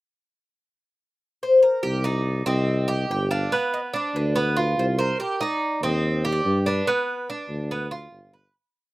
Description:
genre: latin, Cuban son and guajira.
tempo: 143 BPM.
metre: 4/4.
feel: straight.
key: C minor.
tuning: A4 = 439 Hz.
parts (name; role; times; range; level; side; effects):
Cuban tres; melody; 1.4-8.3 s; Bb4 to G5; -25 LUFS; left 2 dB; none.
Cuban tres; arpeggios; 1.8-8.5 s; B3 to C5; -25 LUFS; right 2 dB; none.
warm tuba; bass; 1.8-8.5 s; G1 to G2; -24 LUFS; equal; none.
room: little or no reverb.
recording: recorded outdoors, with no room sound.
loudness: -21 LUFS.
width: side -18 dB against mid.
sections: 0.2-1.8 pickup bar; 1.8-8.5 montuno (vamp).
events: fade-out 6.9-8.5.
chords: 0.2 N.C.; 1.8 Cm; 3.5 Csus4; 5.2 Cm; 6.9 G7.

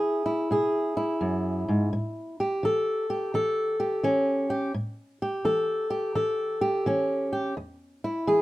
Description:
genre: blues.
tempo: 85 BPM.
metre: 4/4.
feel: swing 65% on 8ths.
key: unclear.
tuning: A4 = 439 Hz.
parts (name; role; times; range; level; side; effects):
fingerpicked steel-string acoustic guitar; solo; 0.0-8.4 s; E2 to A4; -24 LUFS; equal; none.
room: moderate studio reverb, RT60 0.6 s.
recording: rough home demo mix.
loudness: -24 LUFS.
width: side -17 dB against mid.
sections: 0.0-8.4 A section.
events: none.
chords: 0.0 E; 1.9 A7; 7.6 E.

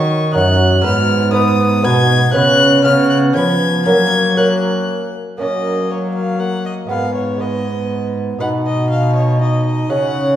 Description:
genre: classical, renaissance-style consort dance.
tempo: 119 BPM.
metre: 3/4.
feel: straight.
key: F# major.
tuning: A4 = 441 Hz.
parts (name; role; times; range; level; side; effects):
warm violin; melody; 0.0-10.4 s; C#5 to G#6; -19 LUFS; left 4 dB; none.
dark bassoon; accompaniment; 0.0-10.4 s; F#3 to D#4; -20 LUFS; right 1 dB; none.
lute; accompaniment; 0.0-10.4 s; F#2 to B4; -19 LUFS; right 2 dB; none.
warm cello; bass; 0.0-10.4 s; F#2 to F#3; -17 LUFS; equal; none.
room: wet recital hall reverb, RT60 1.7 s.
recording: heard from further back in the room.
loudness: -13 LUFS.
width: side -11 dB against mid.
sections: 0.0-5.4 A section; 5.4-10.4 B section.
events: none.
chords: 0.0 D#m; 0.8 G#m; 2.3 C#7sus4; 2.8 C#7; 3.9 F#; 6.9 G#m; 8.4 B.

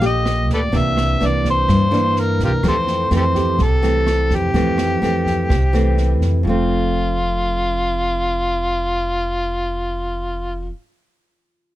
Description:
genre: bossa nova.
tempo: 126 BPM.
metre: 4/4.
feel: straight.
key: F major.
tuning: A4 = 438 Hz.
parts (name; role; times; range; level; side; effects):
overdriven harmonica; melody; 0.0-10.7 s; F4 to E5; -20 LUFS; left 1 dB; none.
nylon-string guitar; accompaniment; 0.0-10.8 s; F2 to G4; -22 LUFS; equal; none.
warm baby grand piano; accompaniment; 0.0-11.8 s; F4 to A4; -32 LUFS; right 5 dB; none.
upright bass; bass; 0.0-10.7 s; F1 to G2; -20 LUFS; equal; none.
open jazz drum kit; drums; 0.0-6.3 s; kick drum, rim click, snare drum; -26 LUFS; right 1 dB; none.
room: little or no reverb.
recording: close, detailed microphones.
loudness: -16 LUFS.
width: side -14 dB against mid.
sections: 0.0-6.4 A section; 6.4-10.3 B section.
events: none.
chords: 0.0 Ebmaj7; 0.7 C9; 2.6 Fmaj7; 6.4 F.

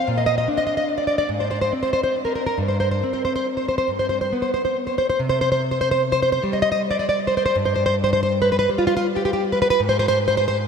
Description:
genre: romantic piece for solo classical guitar.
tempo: 44-54 BPM (dotted quarters).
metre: 6/8.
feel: rubato.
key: C minor.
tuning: A4 = 440 Hz.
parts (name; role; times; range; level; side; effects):
nylon-string guitar; solo; 0.0-10.7 s; G2 to Eb5; -18 LUFS; equal; analog chorus, ping-pong delay.
room: wet huge ambient reverb, RT60 7.2 s.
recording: dreamy mix soaked in reverb.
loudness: -18 LUFS.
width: side -6 dB against mid.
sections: 0.0-5.2 A section; 5.2-10.7 B section.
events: none.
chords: 0.1 Bbadd11; 1.3 Abadd9; 2.6 C5/G; 3.9 G; 5.2 C5; 7.6 N.C.; 9.8 Ab.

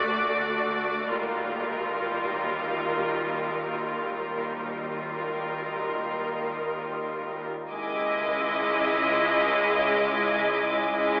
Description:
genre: cinematic.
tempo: free time.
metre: none.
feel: none.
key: unclear.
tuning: A4 = 440 Hz.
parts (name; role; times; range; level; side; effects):
rich studio violin section; melody; 0.0-11.2 s; A#4 to D#5; -29 LUFS; equal; none.
rich symphonic viola section; accompaniment; 0.0-11.2 s; G3 to F#4; -28 LUFS; equal; none.
clear symphonic cello section; bass; 0.0-11.2 s; C#2 to D#2; -34 LUFS; equal; none.
organ-like drone; drone; 0.0-11.2 s; C#2 to D#2; -34 LUFS; equal; ensemble chorus, built-in reverb.
clear symphonic double bass section; bass; 1.1-11.2 s; C#2 to D#2; -40 LUFS; equal; none.
rich symphonic violin section; texture; 7.7-11.2 s; G#5 to D6; -31 LUFS; equal; none.
room: wet cathedral reverb, RT60 5.0 s.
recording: recorded in a church or concert hall, telephone sound.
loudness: -24 LUFS.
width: side -30 dB against mid.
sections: 0.0-7.7 A section; 7.7-11.2 A section.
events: none.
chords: 0.0 D; 1.1 D#add9; 7.7 C#madd9.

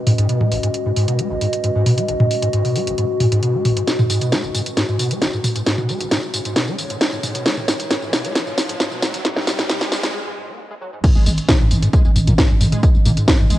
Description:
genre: driving peak-time techno.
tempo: 134 BPM.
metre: 4/4.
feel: straight.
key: G# minor.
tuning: A4 = 440 Hz.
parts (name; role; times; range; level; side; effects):
warbly tape-like pad; texture; 0.0-13.6 s; G#3 to D#5; -25 LUFS; left 1 dB; chorus, built-in reverb, sidechain pumping, cassette tape.
overdriven acid bass; riff; 0.1-13.6 s; G#1 to B3; -22 LUFS; equal; ensemble chorus, cassette tape, sidechain pumping.
techno drum kit; drums; 0.1-13.6 s; crash cymbal, hi-hat, snare drum, tambourine, toms; -19 LUFS; equal; overdrive.
riser; sound effects; 6.1-10.1 s; none; -31 LUFS; equal; none.
electronic kick drum; drums; 11.0-13.4 s; none; -15 LUFS; equal; none.
growling 808-style bass; bass; 11.2-13.6 s; G#1; -19 LUFS; equal; overdrive, sidechain pumping, low-pass filter.
room: moderate lush hall reverb, RT60 2.3 s.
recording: home recording on cassette, high-pass filter.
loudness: -16 LUFS.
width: side -14 dB against mid.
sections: 0.0-11.0 A section; 11.0-13.6 B section.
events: build-up 0.0-11.0; filter sweep on acid bass 0.0-11.0; filter sweep 0.0-11.0; drum fill 3.9-10.1; riser 6.1-10.1; break 10.1-11.0; drop 11.0-13.6.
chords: 0.0 G#m.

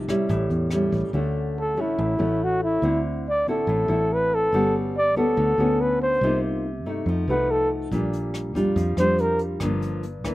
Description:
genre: bossa nova.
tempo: 142 BPM.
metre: 4/4.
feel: straight.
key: unclear.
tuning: A4 = 440 Hz.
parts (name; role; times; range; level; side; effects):
nylon-string guitar; accompaniment; 0.0-10.3 s; G2 to F#4; -26 LUFS; equal; none.
fingered electric bass; bass; 0.0-10.3 s; G1 to G2; -27 LUFS; equal; none.
jazz brush drum kit; drums; 0.1-1.0, 7.9-10.3 s; hi-hat, kick drum, rim click; -36 LUFS; equal; none.
breathy flugelhorn; melody; 1.6-9.4 s; E4 to D5; -22 LUFS; equal; slapback echo.
room: little or no reverb.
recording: recorded outdoors, with no room sound.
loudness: -20 LUFS.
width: side -17 dB against mid.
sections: 0.0-1.1 A section; 1.1-10.3 A section.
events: flugelhorn solo 1.1-10.3.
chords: 0.3 A7; 1.1 Dmaj7; 2.8 D9; 4.5 Gmaj9#11; 6.2 Cm7; 7.1 F7b9; 7.9 Bb6; 9.6 Gm7.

